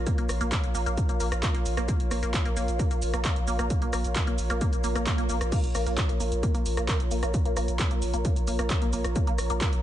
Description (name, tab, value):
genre	driving peak-time techno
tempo	132 BPM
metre	4/4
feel	straight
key	Bb minor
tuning	A4 = 440 Hz
part	saturated sub bass	bass	0.0-9.8 s	Bb1	-30 LUFS	equal	overdrive, sidechain pumping, low-pass filter
part	warbly tape-like pad	texture	0.0-9.8 s	F4 to Bb5	-34 LUFS	right 1 dB	chorus, built-in reverb, sidechain pumping
part	resonant blip pluck	riff	0.1-9.7 s	Bb3	-33 LUFS	left 1 dB	phaser, tube saturation, cassette tape, sidechain pumping, ping-pong delay
part	electronic kick drum	drums	0.1-9.7 s	none	-27 LUFS	equal	none
part	punchy analog drum machine	drums	0.1-9.8 s	crash cymbal, handclaps, hi-hat, rim click, shaker	-33 LUFS	equal	none
part	swell	sound effects	4.8-5.5 s	none	-36 LUFS	right 5 dB	none
room	digital ambience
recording	nothing above 10.5 kHz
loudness	-24 LUFS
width	side -12 dB against mid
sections	0.0-9.8 A section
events	swell 4.8-5.5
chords	0.0 Bbm